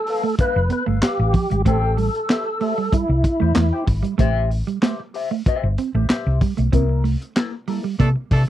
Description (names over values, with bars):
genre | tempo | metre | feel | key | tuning
funk | 95 BPM | 4/4 | straight | unclear | A4 = 440 Hz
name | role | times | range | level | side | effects
tonewheel organ | melody | 0.0-3.8 s | E4 to B4 | -23 LUFS | equal | overdrive, chorus vibrato, slow rotary speaker, tape echo
mellow electric guitar | accompaniment | 0.1-8.2 s | Bb3 to G5 | -27 LUFS | left 7 dB | wah, wide subtle chorus
crunchy breakbeat drum kit | drums | 0.1-8.5 s | handclaps, hi-hat, kick drum, snare drum | -19 LUFS | equal | none
clean electric guitar | riff | 0.2-8.2 s | F3 to C4 | -25 LUFS | right 9 dB | spring reverb
hollow-body short-scale fingered electric bass | bass | 0.4-8.5 s | F1 to C3 | -19 LUFS | equal | none
warm horn section | second line | 8.0-8.4 s | E3 to A4 | -25 LUFS | right 1 dB | none
room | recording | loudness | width
little or no reverb | dry, close 1970s-style studio recording | -18 LUFS | side -12 dB against mid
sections
0.0-8.5 A section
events
band accent 6.7-8.5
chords
0.0 G9; 1.7 Am7; 6.7 C13